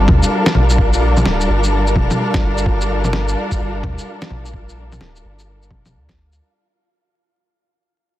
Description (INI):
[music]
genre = future garage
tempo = 128 BPM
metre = 4/4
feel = swing 64% on 16ths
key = G minor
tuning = A4 = 441 Hz
[part]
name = muted studio string section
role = sustained chords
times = 0.0-6.4 s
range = G3 to Bb4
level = -20 LUFS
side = left 1 dB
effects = sidechain pumping
[part]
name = soft dub sub bass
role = bass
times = 0.0-6.4 s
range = D1 to D2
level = -18 LUFS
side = equal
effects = sidechain pumping
[part]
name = flickering grainy texture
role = texture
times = 0.0-6.4 s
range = F4 to F5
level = -26 LUFS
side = equal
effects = built-in reverb
[part]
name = electronic bongos, shaker and snare drum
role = drums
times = 0.1-6.4 s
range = none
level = -19 LUFS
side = left 1 dB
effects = studio reverb, soft clipping on snare
[part]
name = electronic kick drum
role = drums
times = 0.1-6.2 s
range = none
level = -18 LUFS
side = equal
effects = studio reverb
[sound]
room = little or no reverb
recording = dense, heavily limited modern master, vinyl crackle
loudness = -14 LUFS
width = side -14 dB against mid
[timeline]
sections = 0.0-6.4 A section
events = fade-out 0.0-6.4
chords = 0.0 Gm9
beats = 0.31 | 0.78 1.25 1.72 2.19 | 2.66 3.13 3.60 4.06 | 4.53 5.00 5.47 5.94